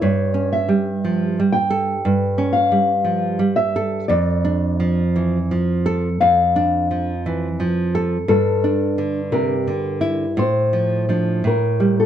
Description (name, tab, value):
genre	romantic duo for nylon-string guitar and classical guitar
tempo	57 BPM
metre	4/4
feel	rubato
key	D minor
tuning	A4 = 442 Hz
part	nylon-string guitar	melody	0.0-12.1 s	A4 to G5	-20 LUFS	left 3 dB	none
part	nylon-string guitar	accompaniment	0.0-12.1 s	F2 to A4	-19 LUFS	right 2 dB	none
room	light reverb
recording	dark, warm production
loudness	-17 LUFS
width	side -10 dB against mid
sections	0.0-12.1 A section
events	none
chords	0.0 A7/G; 4.1 Dm/F; 8.3 Em7b5/G; 10.4 Dm/A; 11.5 A7(no3)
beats	| 0.03 1.05 2.06 3.08 | 4.11 5.18 6.23 7.28 | 8.32 9.35 10.40 11.47